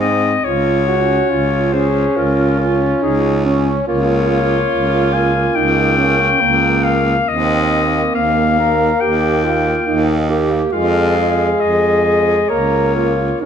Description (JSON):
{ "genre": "classical, lyrical piece for single-reed quartet", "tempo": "70 BPM", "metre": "4/4", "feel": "rubato", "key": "Db major", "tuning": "A4 = 439 Hz", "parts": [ { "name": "clear clarinet", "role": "melody", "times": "0.0-13.5 s", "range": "Ab4 to Ab5", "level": "-18 LUFS", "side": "left 7 dB", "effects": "none" }, { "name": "clear alto saxophone", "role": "second line", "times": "0.0-13.5 s", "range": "Bb3 to Bb4", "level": "-19 LUFS", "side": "right 6 dB", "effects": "none" }, { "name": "mellow tenor saxophone", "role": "accompaniment", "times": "0.0-13.5 s", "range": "Ab3 to Db4", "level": "-20 LUFS", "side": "left 4 dB", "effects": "none" }, { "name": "bright baritone saxophone", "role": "bass", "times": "0.0-13.5 s", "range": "Db2 to Ab2", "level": "-18 LUFS", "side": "right 2 dB", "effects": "none" } ], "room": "wet recital hall reverb, RT60 1.4 s", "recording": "none", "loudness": "-13 LUFS", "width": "side -8 dB against mid", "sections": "0.0-13.5 A section", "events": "none", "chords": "0.4 Db; 3.9 Bbm/Db; 7.3 Eb; 10.7 Fm7; 12.5 Bbm/Db" }